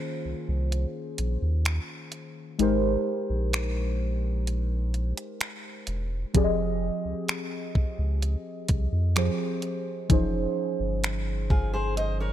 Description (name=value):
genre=contemporary R&B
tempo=64 BPM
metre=4/4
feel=straight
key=Ab major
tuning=A4 = 444 Hz
part: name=muted felt-like synth keys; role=accompaniment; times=0.0-12.3 s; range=Eb3 to Eb5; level=-30 LUFS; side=equal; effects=chorus, phaser
part: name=warm sub bass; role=bass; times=0.3-12.3 s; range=Fb1 to F2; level=-27 LUFS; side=equal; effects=none
part: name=clean 12-bit digital drum machine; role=drums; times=0.7-12.2 s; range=finger snaps, hi-hat, kick drum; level=-28 LUFS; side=equal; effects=none
part: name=fingerpicked steel-string acoustic guitar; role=arpeggios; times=11.5-12.3 s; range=F4 to Eb5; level=-30 LUFS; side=left 1 dB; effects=digital delay
room=light reverb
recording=none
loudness=-25 LUFS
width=side -11 dB against mid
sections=0.0-12.3 A section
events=break 0.0-6.3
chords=0.0 Eb13sus4; 2.6 Abmaj7; 6.3 Fm7; 10.1 Dbmaj9/F